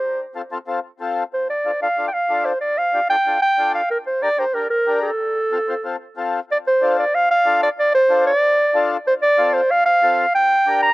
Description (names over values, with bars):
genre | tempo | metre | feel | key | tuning
latin | 186 BPM | 4/4 | straight | D minor | A4 = 441 Hz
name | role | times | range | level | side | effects
warm clarinet | melody | 0.0-10.9 s | A4 to Bb5 | -16 LUFS | right 1 dB | slapback echo
mellow accordion | accompaniment | 0.4-10.9 s | C4 to C5 | -24 LUFS | left 3 dB | slapback echo
room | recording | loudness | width
little or no reverb | recorded outdoors, with no room sound | -16 LUFS | side -20 dB against mid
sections
0.0-6.5 A section; 6.5-10.9 B section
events
none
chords
0.0 F; 1.3 Dm; 3.9 Gm; 5.2 F; 6.5 Dm; 9.1 F; 10.3 Gm